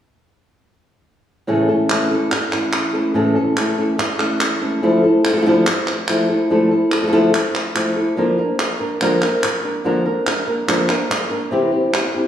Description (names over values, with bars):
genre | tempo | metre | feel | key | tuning
flamenco | 144 BPM | 4/4 | straight | A phrygian dominant | A4 = 440 Hz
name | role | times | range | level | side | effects
flamenco guitar | melody | 1.5-12.3 s | A2 to Bb4 | -16 LUFS | equal | none
palmas hand claps | percussion | 1.9-12.1 s | none | -21 LUFS | right 1 dB | none
room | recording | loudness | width
wet recital hall reverb, RT60 1.4 s | recorded in a church or concert hall | -15 LUFS | side -10 dB against mid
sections
1.5-12.3 A section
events
none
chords
1.5 A; 4.8 Dmadd9; 8.2 Bb/D; 11.5 C